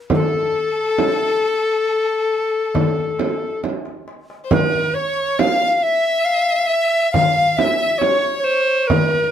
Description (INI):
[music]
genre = Arabic maqam ensemble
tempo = 136 BPM (eighths)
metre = 10/8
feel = straight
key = A maqam saba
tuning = A4 = 440 Hz
[part]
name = bright alto recorder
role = melody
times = 0.1-9.3 s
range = A4 to F5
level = -17 LUFS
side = left 1 dB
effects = none
[part]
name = clear violin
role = second line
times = 0.1-9.3 s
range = A4 to F5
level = -25 LUFS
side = left 3 dB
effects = none
[part]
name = darbuka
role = percussion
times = 0.1-9.1 s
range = none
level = -24 LUFS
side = left 5 dB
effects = none
[part]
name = frame drum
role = percussion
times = 0.1-9.1 s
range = none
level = -21 LUFS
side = right 5 dB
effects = none
[sound]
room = little or no reverb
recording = none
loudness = -16 LUFS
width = side -9 dB against mid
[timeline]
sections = 0.0-4.5 A section; 4.5-9.3 B section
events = drum fill 3.6-4.5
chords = none